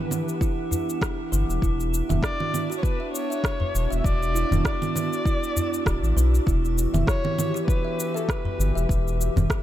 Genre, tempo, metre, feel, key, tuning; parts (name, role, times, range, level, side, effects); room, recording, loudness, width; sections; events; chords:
organic downtempo; 99 BPM; 4/4; swing 55% on 16ths; E dorian; A4 = 441 Hz
dark kamancheh; melody; 0.0-8.9 s; A4 to E5; -31 LUFS; left 1 dB; ping-pong delay
warbly tape-like pad; sustained chords; 0.0-9.6 s; E3 to F#5; -32 LUFS; equal; chorus, built-in reverb, sidechain pumping
kalimba; arpeggios; 0.0-8.9 s; E4 to E5; -32 LUFS; right 3 dB; ping-pong delay
drifting glass-harmonics texture; texture; 0.0-9.6 s; D4 to E5; -38 LUFS; equal; chorus, built-in reverb
electronic congas, shaker and rim click; drums; 0.1-9.6 s; -29 LUFS; right 3 dB
electronic kick drum; drums; 0.4-9.6 s; -25 LUFS; equal
udu; percussion; 0.7-9.5 s; -27 LUFS; left 2 dB
round analog bass; bass; 1.3-9.5 s; D1 to B1; -23 LUFS; equal; sidechain pumping
small room ambience; -22 LUFS; side -12 dB against mid
0.0-9.6 A section
0.0 Em7; 1.6 Bm/E; 6.5 Em7